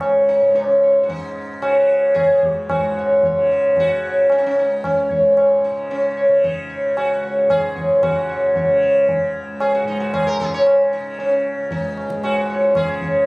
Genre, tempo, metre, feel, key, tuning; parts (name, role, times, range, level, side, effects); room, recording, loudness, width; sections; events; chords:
indian classical, Hindustani; 113 BPM; 5/4; straight; A4 = 440 Hz
sitar; melody; 0.0-13.3 s; Db4 to Db5; -16 LUFS; equal
tanpura; drone; 0.0-13.3 s; Db2 to Db3; -28 LUFS; equal
tabla; percussion; 0.0-13.2 s; -23 LUFS; equal
light reverb; recorded on a phone in the room, club reverb; -15 LUFS; side -29 dB against mid
0.0-2.7 A section; 2.7-13.3 B section
speeding up 0.0-13.3